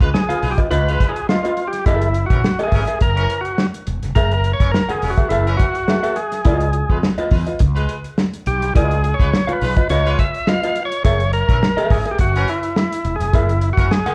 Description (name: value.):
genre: funk.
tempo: 104 BPM.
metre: 4/4.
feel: straight.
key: unclear.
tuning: A4 = 445 Hz.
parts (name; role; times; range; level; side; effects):
clear horn section; second line; 0.0-13.9 s; Fb3 to Cb5; -31 LUFS; equal; none.
mellow fretless electric bass; bass; 0.0-14.1 s; Fb1 to F2; -23 LUFS; equal; none.
warm soul drum kit; drums; 0.0-14.1 s; hi-hat, kick drum, snare drum; -20 LUFS; equal; none.
overdriven tonewheel organ; melody; 0.1-14.1 s; Fb4 to F5; -24 LUFS; equal; none.
hollow-body jazz guitar; accompaniment; 0.3-14.1 s; F4 to Gb5; -25 LUFS; equal; none.
room: moderate large studio reverb, RT60 1.2 s.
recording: band playing live in one room, cassette tape, faint mains hum.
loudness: -18 LUFS.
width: mono.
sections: 0.0-14.1 A section.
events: tonewheel organ solo 0.0-14.1.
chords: 0.0 Db9; 1.9 Gb9; 6.5 Db9; 11.0 Gb9.